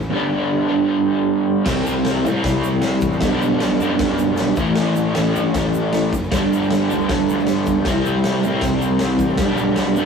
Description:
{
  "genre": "garage rock duo or trio",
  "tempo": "155 BPM",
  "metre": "4/4",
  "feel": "straight",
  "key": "unclear",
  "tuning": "A4 = 440 Hz",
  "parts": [
    { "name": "fuzz picked electric bass", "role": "bass", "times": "0.0-10.1 s", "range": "F#1 to A2", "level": "-27 LUFS", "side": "equal", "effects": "overdrive" },
    { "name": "tube shaker", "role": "percussion", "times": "0.0-10.0 s", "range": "none", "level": "-42 LUFS", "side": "right 5 dB", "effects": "none" },
    { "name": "crunchy overdriven guitar", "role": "riff", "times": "0.1-10.1 s", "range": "G2 to E4", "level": "-17 LUFS", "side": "right 1 dB", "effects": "harmonic tremolo" },
    { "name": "raw garage drum kit", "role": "drums", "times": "1.7-9.9 s", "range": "crash cymbal, kick drum, snare drum", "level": "-25 LUFS", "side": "equal", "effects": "none" }
  ],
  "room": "light reverb",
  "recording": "rough rehearsal-room recording, warm saturation",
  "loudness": "-16 LUFS",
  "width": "side -6 dB against mid",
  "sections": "0.0-1.7 A section; 1.7-10.1 A section",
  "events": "none",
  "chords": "0.1 G; 1.7 C; 3.2 G/B; 4.6 A; 6.3 G; 7.9 C; 9.4 G/B"
}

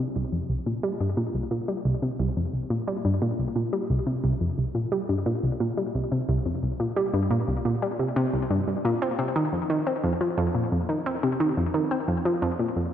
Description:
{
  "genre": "ambient",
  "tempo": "88 BPM",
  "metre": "4/4",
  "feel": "straight",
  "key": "C minor",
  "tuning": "A4 = 440 Hz",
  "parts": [
    { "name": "analog pluck", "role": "solo", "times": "0.0-12.9 s", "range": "C2 to C4", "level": "-24 LUFS", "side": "equal", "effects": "chorus, ping-pong delay" }
  ],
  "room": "wet lush hall reverb, RT60 2.9 s",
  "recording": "worn, warbling old tape, cassette tape, warbly pitch drift",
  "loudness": "-24 LUFS",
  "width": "side -10 dB against mid",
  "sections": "0.0-12.9 A section",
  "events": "none",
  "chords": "none"
}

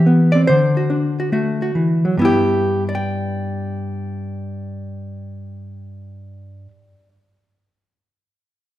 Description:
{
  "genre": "solo jazz",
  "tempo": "141 BPM",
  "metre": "4/4",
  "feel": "swing 67% on 8ths",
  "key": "G major",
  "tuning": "A4 = 440 Hz",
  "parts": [
    { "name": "hollow-body jazz guitar", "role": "solo", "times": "0.0-7.1 s", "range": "G2 to G5", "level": "-17 LUFS", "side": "equal", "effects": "none" }
  ],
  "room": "wet scoring stage reverb, RT60 1.5 s",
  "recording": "recorded in a church or concert hall",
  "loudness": "-16 LUFS",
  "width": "side -13 dB against mid",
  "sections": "0.0-2.2 A section; 2.2-5.6 B section",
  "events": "none",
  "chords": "0.5 D7; 2.2 G6"
}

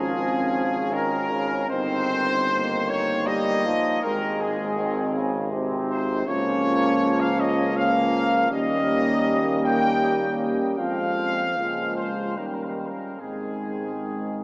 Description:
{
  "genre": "classical, hymn-like piece for brass band",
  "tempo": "67-83 BPM",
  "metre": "3/4",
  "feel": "rubato",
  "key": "Ab major",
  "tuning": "A4 = 440 Hz",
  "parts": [
    { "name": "clear trumpet section", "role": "melody", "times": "0.0-14.4 s", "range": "Ab4 to G5", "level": "-25 LUFS", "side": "left 1 dB", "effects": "none" },
    { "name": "mellow French horn section", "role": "second line", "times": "0.0-14.4 s", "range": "Bb3 to Eb4", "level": "-29 LUFS", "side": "right 1 dB", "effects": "none" },
    { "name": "clear euphonium", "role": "accompaniment", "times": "0.0-14.4 s", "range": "C3 to G3", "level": "-28 LUFS", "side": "equal", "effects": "none" },
    { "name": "warm trombone section", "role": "accompaniment", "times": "0.0-14.4 s", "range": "G3 to Db4", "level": "-29 LUFS", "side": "equal", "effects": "none" },
    { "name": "mellow tuba", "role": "bass", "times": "0.0-14.4 s", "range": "G1 to Ab2", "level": "-30 LUFS", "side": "equal", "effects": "none" }
  ],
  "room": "wet cathedral reverb, RT60 7.3 s",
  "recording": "small speaker sound",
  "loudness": "-21 LUFS",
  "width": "side -27 dB against mid",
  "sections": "0.0-14.4 A section",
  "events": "none",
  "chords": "0.0 Bbm7/Ab; 1.7 Eb/G; 4.0 Ab; 6.3 Db6; 8.5 Eb7; 10.8 Fm; 11.5 Bbm7/Db; 12.4 Eb7; 13.2 Ab"
}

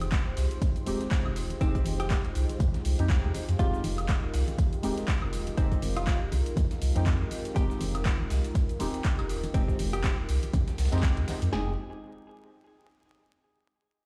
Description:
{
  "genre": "deep house",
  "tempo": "121 BPM",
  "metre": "4/4",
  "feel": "swing 57% on 16ths",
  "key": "F minor",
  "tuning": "A4 = 440 Hz",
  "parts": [
    { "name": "dark analog pad", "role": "sustained chords", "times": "0.0-11.8 s", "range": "Ab3 to C5", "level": "-42 LUFS", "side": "equal", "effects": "chorus, sidechain pumping" },
    { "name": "deep mellow chord stab", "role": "stabs", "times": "0.0-11.7 s", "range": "Ab3 to G4", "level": "-39 LUFS", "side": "equal", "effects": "chorus, phaser, sidechain pumping, tape echo" },
    { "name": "sub bass with octave", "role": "bass", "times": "0.0-11.8 s", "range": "Eb1 to F2", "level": "-32 LUFS", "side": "equal", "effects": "sidechain pumping" },
    { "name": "dusty soul sampler-style drum kit", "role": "drums", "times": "0.0-11.5 s", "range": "hi-hat, snare drum, tambourine", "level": "-50 LUFS", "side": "equal", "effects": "none" },
    { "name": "punchy analog drum machine", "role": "drums", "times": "0.0-11.5 s", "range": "handclaps, hi-hat, shaker, woodblock", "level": "-41 LUFS", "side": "equal", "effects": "overdrive" },
    { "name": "congas", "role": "percussion", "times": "0.0-11.4 s", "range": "none", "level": "-41 LUFS", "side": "equal", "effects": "none" },
    { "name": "deep house drum kit", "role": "drums", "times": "0.1-11.7 s", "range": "kick drum, snare drum", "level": "-29 LUFS", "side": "equal", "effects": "overdrive" },
    { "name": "hollow-body jazz guitar", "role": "melody", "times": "1.6-11.7 s", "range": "C4 to Ab4", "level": "-41 LUFS", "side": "equal", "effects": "tape echo" }
  ],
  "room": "little or no reverb",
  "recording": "played on a big sound system in a bare room, stone room reverb, vinyl crackle",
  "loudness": "-28 LUFS",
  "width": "mono",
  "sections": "0.0-11.5 A section; 11.5-13.5 B section",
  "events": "drop 0.0-11.5",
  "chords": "0.0 Fm9"
}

